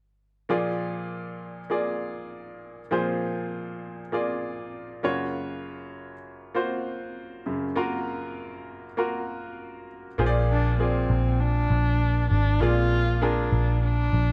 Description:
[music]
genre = pop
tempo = 99 BPM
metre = 4/4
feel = swing 56% on 16ths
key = Bb mixolydian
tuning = A4 = 440 Hz
[part]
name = bright upright piano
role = accompaniment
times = 0.5-14.3 s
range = Gb2 to D5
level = -31 LUFS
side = equal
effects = none
[part]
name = vintage muted picked electric bass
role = bass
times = 10.2-14.3 s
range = Ab1 to Bb1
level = -25 LUFS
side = equal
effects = none
[part]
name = warm viola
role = melody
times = 10.5-14.3 s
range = C4 to F4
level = -30 LUFS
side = equal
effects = tape echo
[sound]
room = light reverb, small room reverb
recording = echo-heavy mix, faint mains hum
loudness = -26 LUFS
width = mono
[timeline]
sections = 0.5-10.2 A section; 10.2-14.3 B section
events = none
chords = 0.5 Bb7; 5.0 Gbmaj7; 10.2 Bb7

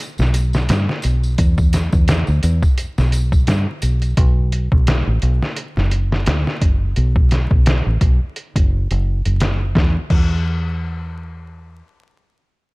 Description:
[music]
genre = trip hop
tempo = 86 BPM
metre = 4/4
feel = swing 56% on 16ths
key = unclear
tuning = A4 = 440 Hz
[part]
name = tambourine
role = percussion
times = 0.0-4.1 s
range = none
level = -37 LUFS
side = left 1 dB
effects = none
[part]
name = fingered electric bass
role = bass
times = 0.2-11.8 s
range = F#1 to G2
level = -17 LUFS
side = equal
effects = none
[part]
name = trip hop sampler-style drum kit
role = drums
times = 0.2-10.3 s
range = crash cymbal, hi-hat, kick drum, snare drum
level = -18 LUFS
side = equal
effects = none
[sound]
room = digital ambience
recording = dark, warm production, vinyl crackle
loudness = -15 LUFS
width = side -26 dB against mid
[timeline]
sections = 0.0-9.8 A section; 9.8-12.5 B section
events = none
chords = none

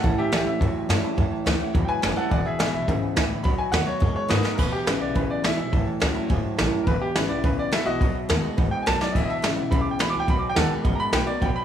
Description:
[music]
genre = rockabilly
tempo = 211 BPM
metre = 4/4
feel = straight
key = E major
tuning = A4 = 441 Hz
[part]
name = bright upright piano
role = melody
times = 0.0-11.6 s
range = D#4 to D6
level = -28 LUFS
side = equal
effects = tape echo
[part]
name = picked steel-string acoustic guitar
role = accompaniment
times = 0.0-11.6 s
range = E2 to F#4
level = -31 LUFS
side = left 4 dB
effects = none
[part]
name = tack piano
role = accompaniment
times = 0.0-11.6 s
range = B4 to B5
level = -36 LUFS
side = right 11 dB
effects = none
[part]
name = electric guitar through a small old amp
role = riff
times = 0.0-11.6 s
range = E2 to A3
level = -29 LUFS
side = equal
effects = none
[part]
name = upright bass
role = bass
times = 0.0-11.6 s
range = E1 to G#2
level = -28 LUFS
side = equal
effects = none
[part]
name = jazz brush drum kit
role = drums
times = 0.0-11.5 s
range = crash cymbal, hi-hat, kick drum, snare drum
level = -25 LUFS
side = equal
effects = none
[sound]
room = little or no reverb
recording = studio reverb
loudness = -21 LUFS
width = side -9 dB against mid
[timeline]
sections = 0.0-4.6 A section; 4.6-11.6 B section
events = drum fill 4.4, 9.0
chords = 0.0 A; 2.3 E; 3.5 B7; 4.6 E; 5.7 A; 6.9 E; 8.0 B7; 9.1 E; 10.3 B7

